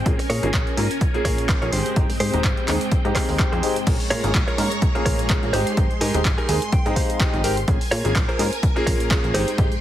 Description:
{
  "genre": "filtered disco house",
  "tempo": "126 BPM",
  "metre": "4/4",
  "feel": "swing 56% on 16ths",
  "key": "Bb dorian",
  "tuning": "A4 = 440 Hz",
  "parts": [
    { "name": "string machine, full ensemble", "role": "sustained chords", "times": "0.0-9.8 s", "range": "Ab3 to C6", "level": "-29 LUFS", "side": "equal", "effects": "ensemble chorus, vintage 12-bit sampler grit, sidechain pumping, low-pass filter" },
    { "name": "plucky analog bass", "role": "bass", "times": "0.0-9.8 s", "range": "Eb1 to Bb2", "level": "-25 LUFS", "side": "equal", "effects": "sidechain pumping, low-pass filter" },
    { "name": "clear grand piano", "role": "accompaniment", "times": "0.1-9.7 s", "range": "Ab3 to Bb4", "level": "-26 LUFS", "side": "equal", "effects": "phaser, sidechain pumping, low-pass filter" },
    { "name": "electronic kick drum", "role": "drums", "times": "0.1-9.7 s", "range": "none", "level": "-21 LUFS", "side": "equal", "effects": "none" },
    { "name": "punchy analog drum machine", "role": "drums", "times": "0.1-9.8 s", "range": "crash cymbal, handclaps, hi-hat", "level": "-28 LUFS", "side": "equal", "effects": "sidechain pumping on hats, sidechain pumping on cymbals" },
    { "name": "direct-recorded clean electric guitar", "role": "riff", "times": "0.2-9.7 s", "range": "Eb4 to Ab5", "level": "-27 LUFS", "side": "equal", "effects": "sidechain pumping, low-pass filter" }
  ],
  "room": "light reverb, digital ambience",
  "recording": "heavily compressed radio sound, multiband compression",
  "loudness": "-18 LUFS",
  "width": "side -12 dB against mid",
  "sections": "0.0-3.9 A section; 3.9-9.8 B section",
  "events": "drop 3.9-9.8; clean electric guitar fill 6.2-7.7",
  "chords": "0.1 Bbm7; 1.7 Abmaj7; 3.9 Bbm7; 5.5 Abmaj7; 7.7 Bbm7",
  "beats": "| 0.06 0.54 1.01 1.49 | 1.96 2.44 2.92 3.39 | 3.87 4.34 4.82 5.30 | 5.77 6.25 6.73 7.20 | 7.68 8.15 8.63 9.11 | 9.58"
}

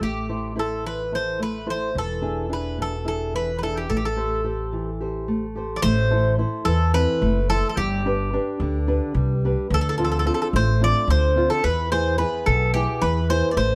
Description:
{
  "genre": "greek folk, Greek bouzouki band",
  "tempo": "217 BPM (eighths)",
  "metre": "7/8",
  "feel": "straight",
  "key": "A minor",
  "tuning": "A4 = 439 Hz",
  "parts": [
    { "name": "Greek bouzouki", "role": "melody", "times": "0.0-13.8 s", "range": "G4 to D5", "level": "-27 LUFS", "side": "equal", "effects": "none" },
    { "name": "flamenco guitar", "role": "accompaniment", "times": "0.0-13.8 s", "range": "B2 to C5", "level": "-28 LUFS", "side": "equal", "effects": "none" },
    { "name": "upright bass", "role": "bass", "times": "0.0-13.8 s", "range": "E1 to E2", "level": "-26 LUFS", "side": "equal", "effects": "none" }
  ],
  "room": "light reverb",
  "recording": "dark, warm production",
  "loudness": "-23 LUFS",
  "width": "mono",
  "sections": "0.0-5.8 A section; 5.8-13.8 B section",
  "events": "none",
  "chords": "0.0 Am; 2.0 E7; 3.9 Am7; 5.8 Am; 7.8 G; 9.7 Dm7; 11.6 E",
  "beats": "| 0.01 0.29 0.56 0.84 1.12 1.40 1.67 | 1.95 2.23 2.51 2.78 3.06 3.34 3.62 | 3.89 4.17 4.45 4.73 5.00 5.28 5.56 | 5.83 6.11 6.39 6.67 6.94 7.22 7.50 | 7.77 8.05 8.32 8.60 8.88 9.15 9.43 | 9.71 9.98 10.26 10.53 10.81 11.09 11.36 | 11.64 11.91 12.19 12.47 12.74 13.02 13.29 | 13.57"
}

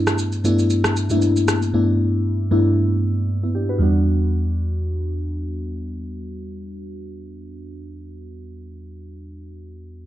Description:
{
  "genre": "amapiano",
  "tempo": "116 BPM",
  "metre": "4/4",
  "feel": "swing 55% on 16ths",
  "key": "E minor",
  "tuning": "A4 = 440 Hz",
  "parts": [
    { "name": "crystalline FM electric piano", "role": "accompaniment", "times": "0.0-10.1 s", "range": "E2 to B4", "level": "-20 LUFS", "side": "equal", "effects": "chorus, phaser, low-pass filter" },
    { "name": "electronic shaker and rim click", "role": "drums", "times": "0.1-1.7 s", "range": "none", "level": "-24 LUFS", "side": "equal", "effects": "vintage 12-bit sampler grit" }
  ],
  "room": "light reverb, digital ambience",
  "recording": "dark, warm production",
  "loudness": "-18 LUFS",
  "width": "side -13 dB against mid",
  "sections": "0.0-3.8 A section; 3.8-7.9 B section",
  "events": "filter sweep on FM electric piano 0.0-3.8",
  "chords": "0.0 G69; 3.8 Em7",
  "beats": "0.18 0.70 1.22 | 1.74 2.25 2.77 3.29 | 3.81 4.32 4.84 5.36 | 5.88 6.39 6.91 7.43"
}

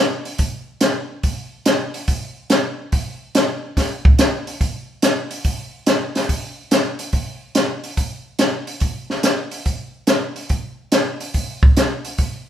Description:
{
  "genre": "jazz",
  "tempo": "142 BPM",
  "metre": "4/4",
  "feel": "swing 67% on 8ths",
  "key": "none",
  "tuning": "none",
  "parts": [
    { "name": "compact cocktail drum kit", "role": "drums", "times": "0.3-12.3 s", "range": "hi-hat, kick drum, snare drum", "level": "-17 LUFS", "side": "equal", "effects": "none" }
  ],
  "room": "moderate stone room reverb, RT60 1.0 s",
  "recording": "band playing live in one room",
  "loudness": "-18 LUFS",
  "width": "side -10 dB against mid",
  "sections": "0.0-7.1 A section; 7.1-12.5 B section",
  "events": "none",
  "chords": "none",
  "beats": "| 0.39 0.81 1.23 1.66 | 2.08 2.50 2.92 3.34 | 3.76 4.18 4.60 5.03 | 5.45 5.87 6.29 6.71 | 7.13 7.55 7.97 8.40 | 8.82 9.24 9.66 10.08 | 10.50 10.93 11.35 11.77 | 12.19"
}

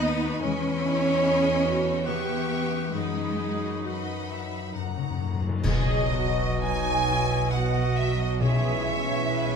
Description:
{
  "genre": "classical, slow romantic movement for symphony orchestra",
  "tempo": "58-76 BPM",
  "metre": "3/4",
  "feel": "rubato",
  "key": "B major",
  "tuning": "A4 = 440 Hz",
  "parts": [
    { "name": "warm studio violin section", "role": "melody", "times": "0.0-9.6 s", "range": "D#5 to C#6", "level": "-35 LUFS", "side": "left 4 dB", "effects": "none" },
    { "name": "rich studio violin section", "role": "second line", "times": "0.0-9.6 s", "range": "D#5 to D#6", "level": "-34 LUFS", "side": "left 1 dB", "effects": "none" },
    { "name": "warm clarinet", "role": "second line", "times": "0.0-4.7 s", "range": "F#4 to D#5", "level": "-29 LUFS", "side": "right 2 dB", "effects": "none" },
    { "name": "clear studio viola section", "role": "accompaniment", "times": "0.0-9.6 s", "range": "G#3 to C#5", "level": "-34 LUFS", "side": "right 2 dB", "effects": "none" },
    { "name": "concert harp", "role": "arpeggios", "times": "0.0-9.6 s", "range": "F#2 to B5", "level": "-31 LUFS", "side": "left 10 dB", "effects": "none" },
    { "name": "rich studio cello section", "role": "bass", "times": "0.0-9.6 s", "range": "B2 to D#4", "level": "-32 LUFS", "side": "right 1 dB", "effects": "none" },
    { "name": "rich studio double bass section", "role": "bass", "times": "0.0-9.6 s", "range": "B1 to F#2", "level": "-31 LUFS", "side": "right 5 dB", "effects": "none" },
    { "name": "cymbal swell, clash cymbals and concert bass drum", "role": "percussion", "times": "2.9-7.5 s", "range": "none", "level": "-34 LUFS", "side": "equal", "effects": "none" },
    { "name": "timpani", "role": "percussion", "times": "4.7-9.6 s", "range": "F#2 to B2", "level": "-32 LUFS", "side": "left 2 dB", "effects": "none" },
    { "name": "clear trombone section", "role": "sustained chords", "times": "5.6-9.6 s", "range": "B2 to G#3", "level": "-35 LUFS", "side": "right 5 dB", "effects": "none" },
    { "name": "warm French horn section", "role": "sustained chords", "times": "5.6-9.6 s", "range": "B3 to F#4", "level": "-35 LUFS", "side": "left 4 dB", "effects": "none" },
    { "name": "clear trumpet", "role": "stabs", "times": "5.6-9.6 s", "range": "C#5 to D#5", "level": "-36 LUFS", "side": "right 2 dB", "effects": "none" },
    { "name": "small flute group", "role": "second line", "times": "5.7-9.6 s", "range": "D#5 to G#5", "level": "-32 LUFS", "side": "right 7 dB", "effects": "none" }
  ],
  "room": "wet recital hall reverb, RT60 1.4 s",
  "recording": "none",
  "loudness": "-23 LUFS",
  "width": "side -6 dB against mid",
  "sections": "0.0-5.6 A section; 5.6-9.6 B section",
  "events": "timpani fill 4.7-5.6; band accent 5.6-6.6",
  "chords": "0.4 Emaj7; 2.1 C#m7b5/E; 2.9 B/F#; 4.7 F#; 5.6 B; 8.4 C#m7/B",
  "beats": "| 0.43 1.24 2.06 | 2.94 3.85 4.74 | 5.63 6.62 7.52 | 8.41 9.29"
}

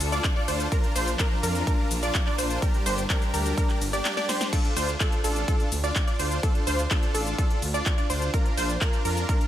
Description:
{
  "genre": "EDM, festival progressive house",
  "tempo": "126 BPM",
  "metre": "4/4",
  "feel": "straight",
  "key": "D minor",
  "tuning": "A4 = 436 Hz",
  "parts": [
    { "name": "rich symphonic string section", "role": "sustained chords", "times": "0.0-4.5 s", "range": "D3 to A4", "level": "-35 LUFS", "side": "left 3 dB", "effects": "sidechain pumping" },
    { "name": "wide detuned saw bass", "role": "bass", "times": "0.0-9.3 s", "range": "G1 to F2", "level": "-28 LUFS", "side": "equal", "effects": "chorus, sidechain pumping" },
    { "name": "big-room dance drum kit", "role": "drums", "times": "0.0-9.5 s", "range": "cabasa, crash cymbal, handclaps, hi-hat, ride cymbal, snare drum", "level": "-31 LUFS", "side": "left 1 dB", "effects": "none" },
    { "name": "wide unison pluck", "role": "arpeggios", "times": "0.1-9.5 s", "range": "A4 to D5", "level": "-32 LUFS", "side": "right 2 dB", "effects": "sidechain pumping, digital delay" },
    { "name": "supersaw chords", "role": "riff", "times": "0.1-9.5 s", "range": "D4 to D5", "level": "-30 LUFS", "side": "equal", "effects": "sidechain pumping, digital delay" },
    { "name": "electronic kick drum", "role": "drums", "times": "0.2-9.4 s", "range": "none", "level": "-25 LUFS", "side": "equal", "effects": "none" }
  ],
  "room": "little or no reverb",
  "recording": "none",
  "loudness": "-23 LUFS",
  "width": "side -12 dB against mid",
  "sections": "0.0-4.5 A section; 4.5-9.5 A section",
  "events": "drop 0.0-4.5, 4.5-9.5; drum fill 4.1-4.5",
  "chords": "0.0 Dm; 0.7 Bb; 2.6 Gm; 4.5 Dm; 8.3 Bb",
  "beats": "0.24 | 0.72 1.20 1.67 2.15 | 2.62 3.10 3.58 4.05 | 4.53 5.00 5.48 5.96 | 6.43 6.91 7.38 7.86 | 8.34 8.81 9.29"
}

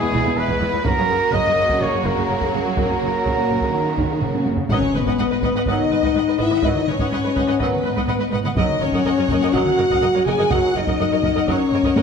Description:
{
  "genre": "cinematic, epic orchestral film score",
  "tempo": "124 BPM",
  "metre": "4/4",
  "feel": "straight",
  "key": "G# minor",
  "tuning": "A4 = 440 Hz",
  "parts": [
    { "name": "warm symphonic violin section", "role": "melody", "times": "0.0-12.0 s", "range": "G#4 to F#5", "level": "-30 LUFS", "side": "left 4 dB", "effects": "none" },
    { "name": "warm symphonic violin section", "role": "second line", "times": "0.0-12.0 s", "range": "A#3 to G#5", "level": "-26 LUFS", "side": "left 2 dB", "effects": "none" },
    { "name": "warm studio viola section", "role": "accompaniment", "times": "0.0-12.0 s", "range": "C#3 to D#5", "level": "-28 LUFS", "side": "right 1 dB", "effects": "none" },
    { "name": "clear trombone section", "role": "sustained chords", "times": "0.0-11.6 s", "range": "C#3 to G#3", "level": "-30 LUFS", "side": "right 5 dB", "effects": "none" },
    { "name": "dark French horn section", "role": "sustained chords", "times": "0.0-12.0 s", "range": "A#3 to G#4", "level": "-21 LUFS", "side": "left 4 dB", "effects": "none" },
    { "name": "mellow trumpet", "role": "stabs", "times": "0.0-4.4 s", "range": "G#4 to D#5", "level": "-22 LUFS", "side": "right 2 dB", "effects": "none" },
    { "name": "dark studio cello section", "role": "bass", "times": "0.0-12.0 s", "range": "E2 to D#3", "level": "-26 LUFS", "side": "right 3 dB", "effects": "none" },
    { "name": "dark symphonic double bass section", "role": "bass", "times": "0.1-12.0 s", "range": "E1 to G#1", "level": "-28 LUFS", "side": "right 4 dB", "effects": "none" },
    { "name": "taiko ensemble", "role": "drums", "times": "0.1-12.0 s", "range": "none", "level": "-26 LUFS", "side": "equal", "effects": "none" },
    { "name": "impact", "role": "sound effects", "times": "4.7-6.6 s", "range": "none", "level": "-33 LUFS", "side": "equal", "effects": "none" }
  ],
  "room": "wet scoring stage reverb, RT60 1.7 s",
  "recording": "none",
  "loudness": "-17 LUFS",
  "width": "side -6 dB against mid",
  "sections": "0.0-4.7 A section; 4.7-12.0 B section",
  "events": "drum fill 4.2-4.7; impact 4.7-6.6",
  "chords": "0.0 E; 0.9 F#; 4.7 G#m7; 8.6 D#m7/F#",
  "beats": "0.37 | 0.85 1.34 1.82 2.30 | 2.78 3.26 3.74 4.23 | 4.71 5.19 5.67 6.16 | 6.64 7.12 7.60 8.09 | 8.57 9.05 9.54 10.02 | 10.51 10.99 11.48 11.96"
}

